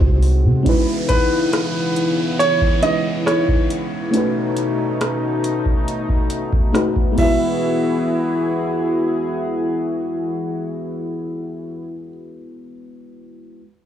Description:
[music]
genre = contemporary R&B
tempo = 69 BPM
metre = 4/4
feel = straight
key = E major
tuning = A4 = 443 Hz
[part]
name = mellow FM electric piano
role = accompaniment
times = 0.0-13.6 s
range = G#3 to B#4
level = -22 LUFS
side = left 2 dB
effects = chorus
[part]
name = chorused pulse-width pad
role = sustained chords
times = 0.0-11.9 s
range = B2 to G#4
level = -23 LUFS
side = right 1 dB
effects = none
[part]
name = soft 808-style bass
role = bass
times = 0.0-0.7 s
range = B#1 to B#2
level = -14 LUFS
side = equal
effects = none
[part]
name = booming analog drum machine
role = drums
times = 0.0-7.4 s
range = crash cymbal, hi-hat, kick drum, rim click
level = -20 LUFS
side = equal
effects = none
[part]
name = downlifter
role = sound effects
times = 0.7-7.6 s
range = none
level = -32 LUFS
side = right 1 dB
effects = none
[part]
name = clear concert grand piano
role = melody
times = 1.1-12.1 s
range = B4 to E5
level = -22 LUFS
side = right 3 dB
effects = tape echo
[sound]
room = digital ambience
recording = dry, gritty hardware recording, small room ambience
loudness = -17 LUFS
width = side -10 dB against mid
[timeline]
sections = 0.7-7.6 A section; 7.6-11.1 B section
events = none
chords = 0.0 G#7; 0.7 C#m7; 4.1 B9; 7.2 Eadd9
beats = | 0.66 1.53 2.40 3.27 | 4.14 5.01 5.88 6.75 | 7.62 8.48 9.35 10.22

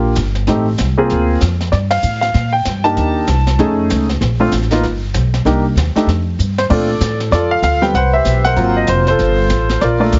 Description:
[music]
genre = jazz piano trio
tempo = 193 BPM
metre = 4/4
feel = swing 61% on 8ths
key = Bb major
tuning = A4 = 439 Hz
[part]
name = clear grand piano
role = melody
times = 0.0-10.2 s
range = Gb3 to A5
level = -17 LUFS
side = equal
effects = none
[part]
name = upright bass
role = bass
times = 0.0-10.2 s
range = F1 to Bb2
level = -18 LUFS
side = equal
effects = none
[part]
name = jazz brush drum kit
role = drums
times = 0.2-10.2 s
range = brushed snare drum, crash cymbal, hi-hat, kick drum, ride cymbal, snare drum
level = -27 LUFS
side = equal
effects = none
[sound]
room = light reverb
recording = heavily compressed radio sound, multiband compression, nothing above 7.6 kHz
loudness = -15 LUFS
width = mono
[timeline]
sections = 0.0-6.7 A section; 6.7-10.2 B section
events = band accent 1.9; drum fill 6.4-6.7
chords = 0.5 Am7b5; 1.1 Dm7b5; 1.7 Gm9; 3.0 Cm7; 3.6 F7alt; 4.2 Bbmaj7(no3); 4.8 G; 5.5 Cm7; 6.1 Fsus2; 6.7 Bbmaj9; 7.9 Cmaj7#11; 8.6 Ab13; 9.2 Gm9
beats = 0.16 | 0.47 0.78 1.09 1.41 | 1.72 2.03 2.34 2.65 | 2.96 3.27 3.58 3.90 | 4.21 4.52 4.83 5.14 | 5.45 5.77 6.08 6.39 | 6.70 7.01 7.32 7.63 | 7.95 8.26 8.57 8.88 | 9.19 9.50 9.81 10.13

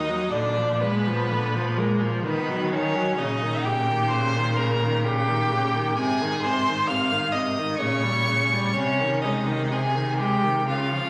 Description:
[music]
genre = classical, slow romantic movement for string quartet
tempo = 64 BPM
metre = 3/4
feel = uneven beats, rubato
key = Ab major from 3.2 s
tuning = A4 = 440 Hz
[part]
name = rich violin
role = melody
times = 0.0-11.1 s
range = A#4 to F6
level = -29 LUFS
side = equal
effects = none
[part]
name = clear violin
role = second line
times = 0.0-11.1 s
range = A#3 to F5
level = -31 LUFS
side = equal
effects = none
[part]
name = rich viola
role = accompaniment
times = 0.0-11.1 s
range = C3 to Ab3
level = -29 LUFS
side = equal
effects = none
[part]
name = rich cello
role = bass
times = 0.0-11.1 s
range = D#2 to D#3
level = -30 LUFS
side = equal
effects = none
[sound]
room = wet scoring stage reverb, RT60 1.6 s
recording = vinyl crackle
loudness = -24 LUFS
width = mono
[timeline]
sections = 0.0-11.1 A section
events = none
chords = 0.3 A#7; 2.2 D#m; 3.2 Eb7/Bb; 6.0 Ab; 7.8 Gdim/Bb; 8.8 Ab/C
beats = | 0.31 1.30 2.24 | 3.18 4.10 5.03 | 5.97 6.88 7.79 | 8.75 9.71 10.68

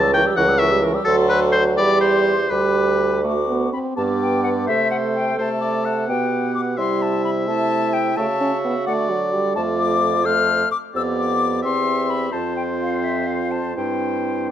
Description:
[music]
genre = quick classical-period movement for wind quintet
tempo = 85 BPM (dotted quarters)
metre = 6/8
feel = rubato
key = G major, C major from 9.6 s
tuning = A4 = 441 Hz
[part]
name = silver concert flute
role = melody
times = 0.0-14.5 s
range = E5 to F6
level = -24 LUFS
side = left 6 dB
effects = none
[part]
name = bright oboe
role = second line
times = 0.0-14.5 s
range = A4 to A5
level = -24 LUFS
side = left 3 dB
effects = none
[part]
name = bright clarinet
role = accompaniment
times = 0.0-14.5 s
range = E4 to A#4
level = -26 LUFS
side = right 6 dB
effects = none
[part]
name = clear French horn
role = accompaniment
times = 0.0-14.5 s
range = E3 to C#4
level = -24 LUFS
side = right 2 dB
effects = none
[part]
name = mellow bassoon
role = bass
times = 0.0-14.5 s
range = C#2 to D3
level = -23 LUFS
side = right 1 dB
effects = none
[sound]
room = moderate recital hall reverb, RT60 1.4 s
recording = dark, warm production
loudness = -17 LUFS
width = side -10 dB against mid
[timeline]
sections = 0.0-4.0 A section; 4.0-14.5 B section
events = none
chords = 0.0 C#dim7; 1.1 D7; 1.8 Em; 2.5 G/D; 3.2 D; 4.0 G; 4.7 Am/C; 6.1 G/B; 6.8 Am7/C; 8.2 A/C#; 8.9 D; 9.6 Dm/F; 10.9 G7/F; 11.6 C/E; 12.3 F5; 13.8 C/G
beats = 0.37 | 1.07 1.78 | 2.51 3.24 | 3.97 4.68 | 5.38 6.09 | 6.78 7.48 | 8.17 8.87 | 9.56 10.25 | 10.94 11.63 | 12.33 13.04 | 13.77 14.50

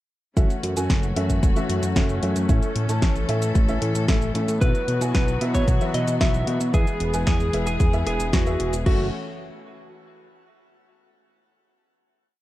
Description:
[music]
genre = italo disco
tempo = 113 BPM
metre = 4/4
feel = straight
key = F# minor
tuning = A4 = 440 Hz
[part]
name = clear studio string section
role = sustained chords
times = 0.4-9.1 s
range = E3 to A4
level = -29 LUFS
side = left 2 dB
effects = shimmer reverb
[part]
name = clear grand piano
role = stabs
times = 0.4-9.1 s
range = B3 to A5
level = -30 LUFS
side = right 2 dB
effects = shimmer reverb
[part]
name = fat analog bass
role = bass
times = 0.4-9.1 s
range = E1 to B2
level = -25 LUFS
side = equal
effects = tube saturation
[part]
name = electronic kick drum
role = drums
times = 0.4-9.0 s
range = none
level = -21 LUFS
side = equal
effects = none
[part]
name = house drum kit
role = drums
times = 0.4-9.0 s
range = cabasa, crash cymbal, hi-hat, snare drum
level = -30 LUFS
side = equal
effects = none
[part]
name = lightly driven lead guitar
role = melody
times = 4.6-9.1 s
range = F#4 to E5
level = -28 LUFS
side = equal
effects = ping-pong delay, shimmer reverb
[sound]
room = light reverb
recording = dark, warm production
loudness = -19 LUFS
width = side -15 dB against mid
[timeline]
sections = 0.4-8.9 verse; 8.9-11.0 final chord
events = none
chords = 0.4 F#m7; 2.5 A; 4.6 Bsus4; 6.7 E; 8.9 F#m7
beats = | 0.37 0.90 1.43 1.96 | 2.49 3.02 3.55 4.08 | 4.62 5.15 5.68 6.21 | 6.74 7.27 7.80 8.33 | 8.86

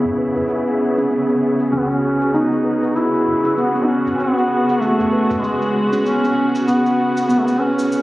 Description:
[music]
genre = organic downtempo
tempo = 97 BPM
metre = 4/4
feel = swing 59% on 16ths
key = C# minor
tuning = A4 = 441 Hz
[part]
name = warm studio string section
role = sustained chords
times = 0.0-8.0 s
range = C#3 to G#4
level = -21 LUFS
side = equal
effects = none
[part]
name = steel tongue drum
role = arpeggios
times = 0.0-8.0 s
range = B3 to B4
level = -21 LUFS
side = left 1 dB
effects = vintage 12-bit sampler grit, ping-pong delay
[part]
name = woody fretless electric bass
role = bass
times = 0.0-8.0 s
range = C#2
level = -31 LUFS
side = equal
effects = analog chorus
[part]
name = cabasa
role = drums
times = 0.1-8.0 s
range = none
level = -42 LUFS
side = equal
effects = overdrive
[part]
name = udu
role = percussion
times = 0.1-5.4 s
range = none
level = -36 LUFS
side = equal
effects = none
[part]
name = mellow duduk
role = melody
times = 1.7-8.0 s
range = G#3 to E4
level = -17 LUFS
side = equal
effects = ping-pong delay
[sound]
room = moderate scoring stage reverb, RT60 2.0 s, studio ambience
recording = recorded on a phone in the room, club reverb, compression, low-pass filter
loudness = -15 LUFS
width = side -17 dB against mid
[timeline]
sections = 0.0-8.0 A section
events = filter sweep on steel tongue drum 0.0-8.0; filter sweep 0.0-8.0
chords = 0.0 C#m7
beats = 0.49 1.11 | 1.73 2.35 2.96 3.58 | 4.20 4.82 5.44 6.06 | 6.67 7.29 7.91

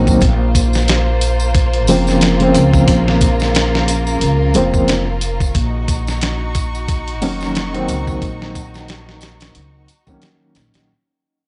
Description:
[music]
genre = trip hop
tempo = 90 BPM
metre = 4/4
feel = swing 57% on 16ths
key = unclear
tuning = A4 = 440 Hz
[part]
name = felt-muted upright piano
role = accompaniment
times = 0.0-10.9 s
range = Db3 to Db4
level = -19 LUFS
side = equal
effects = tremolo, tape echo
[part]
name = rich chamber violin section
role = sustained chords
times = 0.0-10.8 s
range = Bb3 to Db6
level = -26 LUFS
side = equal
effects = none
[part]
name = upright bass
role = bass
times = 0.0-10.9 s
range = F1 to Db2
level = -20 LUFS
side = equal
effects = tube saturation
[part]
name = dusty soul sampler-style drum kit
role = drums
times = 0.1-10.9 s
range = hi-hat, kick drum, snare drum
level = -21 LUFS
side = equal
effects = none
[part]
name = tambourine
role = percussion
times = 0.1-10.9 s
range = none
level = -32 LUFS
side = equal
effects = none
[sound]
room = small room ambience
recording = dry, gritty hardware recording, transformer saturation, nothing above 10.6 kHz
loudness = -15 LUFS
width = mono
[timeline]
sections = 0.0-10.9 A section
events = fade-out 3.8-10.9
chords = 0.2 Bbmadd9; 5.5 Ebm7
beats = | 0.22 0.88 1.55 2.22 | 2.88 3.55 4.22 4.88 | 5.55 6.22 6.88 7.55 | 8.22 8.88 9.55 10.22

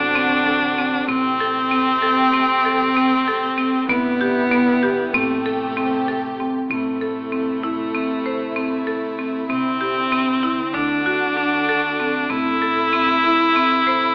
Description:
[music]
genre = contemporary instrumental, chamber music in an uneven meter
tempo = 192 BPM (eighths)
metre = 9/8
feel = straight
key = A dorian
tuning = A4 = 440 Hz
[part]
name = warm viola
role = second line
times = 0.0-14.1 s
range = A3 to E4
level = -22 LUFS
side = equal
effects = none
[part]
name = dark studio string section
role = sustained chords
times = 0.0-14.1 s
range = C3 to G4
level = -30 LUFS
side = equal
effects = none
[part]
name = marimba with hard mallets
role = arpeggios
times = 0.0-14.1 s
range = B3 to C5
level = -24 LUFS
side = equal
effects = none
[part]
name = upright bass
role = bass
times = 0.0-14.1 s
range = A1 to D2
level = -44 LUFS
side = equal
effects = none
[sound]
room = moderate recital hall reverb, RT60 1.6 s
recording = AM radio sound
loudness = -19 LUFS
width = mono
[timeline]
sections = 0.0-6.7 A section; 6.7-14.1 B section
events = none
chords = 0.0 D7/A; 1.1 Am7; 3.9 Em7/A; 5.1 Am7; 6.7 Am; 9.5 Cadd9; 10.7 D; 12.3 Am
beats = 0.14 0.46 0.77 | 1.08 1.39 1.70 2.02 2.33 2.64 2.95 3.26 3.58 | 3.89 4.20 4.51 4.82 5.13 5.45 5.76 6.07 6.38 | 6.69 7.00 7.32 7.63 7.94 8.25 8.56 8.88 9.19 | 9.50 9.81 10.12 10.43 10.75 11.06 11.37 11.68 11.99 | 12.30 12.62 12.93 13.24 13.55 13.86

